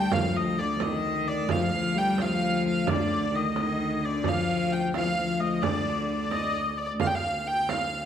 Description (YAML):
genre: medieval dance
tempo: 87 BPM (dotted quarters)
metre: 6/8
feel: straight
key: D phrygian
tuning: A4 = 439 Hz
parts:
  - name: clear hurdy-gurdy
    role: melody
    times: 0.0-8.1 s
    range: D5 to G5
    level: -28 LUFS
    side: equal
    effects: none
  - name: rich viola da gamba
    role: second line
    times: 0.0-6.5 s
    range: D3 to G3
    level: -29 LUFS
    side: left 4 dB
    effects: tape echo
  - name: clear viola da gamba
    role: drone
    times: 0.0-8.1 s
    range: D2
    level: -33 LUFS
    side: right 2 dB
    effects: none
  - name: frame drum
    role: percussion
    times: 0.1-7.9 s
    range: none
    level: -32 LUFS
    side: right 6 dB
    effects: none
room: wet recital hall reverb, RT60 1.6 s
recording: none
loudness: -24 LUFS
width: side -9 dB against mid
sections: 0.0-7.0 A section; 7.0-8.1 A section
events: none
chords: none